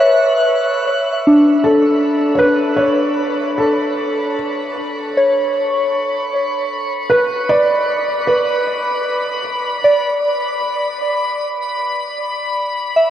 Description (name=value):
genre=ambient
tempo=77 BPM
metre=3/4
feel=straight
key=D major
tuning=A4 = 440 Hz
part: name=soft synth bell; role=arpeggios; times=0.0-13.1 s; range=D4 to E5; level=-16 LUFS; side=equal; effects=chorus, diffuse ambient delay
part: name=drifting glass-harmonics texture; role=texture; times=0.0-13.1 s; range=B5 to F#6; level=-24 LUFS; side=left 1 dB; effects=chorus, built-in reverb
part: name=felt-muted upright piano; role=melody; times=1.6-9.8 s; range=A4 to D5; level=-18 LUFS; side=right 1 dB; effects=diffuse ambient delay
room=wet shimmer reverb, RT60 8.2 s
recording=worn, warbling old tape, cassette tape, warbly pitch drift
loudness=-14 LUFS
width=side -10 dB against mid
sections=0.0-1.3 A section; 1.3-13.1 B section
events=fade-in on synth texture 1.3-13.1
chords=0.0 Bm7; 1.3 Dsus2; 5.9 Bm; 10.6 N.C.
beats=0.49 | 1.27 2.05 2.83 | 3.61 4.39 5.17 | 5.95 6.73 7.51 | 8.29 9.06 9.84 | 10.62 11.40 12.18 | 12.96